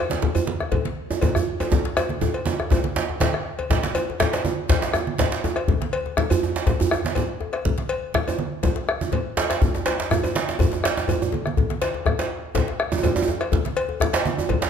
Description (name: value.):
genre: west african traditional, West African drum ensemble.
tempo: 122 BPM.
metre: 4/4.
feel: straight.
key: none.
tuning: none.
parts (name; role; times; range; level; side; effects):
congas; percussion; 0.1-14.6 s; none; -29 LUFS; right 5 dB; none.
djembe; percussion; 0.1-14.7 s; none; -27 LUFS; left 6 dB; none.
djembe; percussion; 0.1-14.7 s; none; -24 LUFS; right 5 dB; none.
cowbell; percussion; 0.3-14.6 s; none; -30 LUFS; left 4 dB; none.
bombo; percussion; 0.6-14.7 s; none; -26 LUFS; left 2 dB; none.
room: moderate recital hall reverb, RT60 1.3 s.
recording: none.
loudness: -20 LUFS.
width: side -7 dB against mid.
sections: 0.0-3.7 A section; 3.7-14.7 A section.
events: drum fill 1.7-3.7, 11.0-11.6.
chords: none.